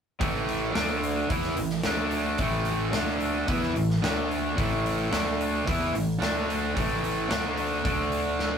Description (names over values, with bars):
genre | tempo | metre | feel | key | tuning
hard rock | 110 BPM | 4/4 | straight | unclear | A4 = 438 Hz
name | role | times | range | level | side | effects
distorted electric guitar | riff | 0.2-8.6 s | A2 to E4 | -28 LUFS | right 3 dB | overdrive
overdriven semi-hollow guitar | riff | 0.2-8.6 s | A2 to E4 | -30 LUFS | left 4 dB | none
growling fingered electric bass | bass | 0.2-8.6 s | A1 to E2 | -34 LUFS | left 1 dB | overdrive
big rock drum kit | drums | 0.2-8.5 s | hi-hat, kick drum, snare drum | -31 LUFS | equal | none
room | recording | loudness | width
moderate small room ambience, RT60 0.5 s | rough rehearsal-room recording | -24 LUFS | side -7 dB against mid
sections
0.2-8.6 A section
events
drum fill 8.4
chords
0.2 A5; 0.8 D5; 1.3 A5; 1.8 D5; 2.4 A5; 2.9 D5; 3.5 A5; 4.0 D5; 4.6 A5; 5.1 D5; 5.7 A5; 6.2 D5; 6.8 A5; 7.3 D5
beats
| 0.21 0.76 1.30 1.85 | 2.39 2.94 3.49 4.03 | 4.58 5.12 5.67 6.22 | 6.76 7.31 7.85 8.40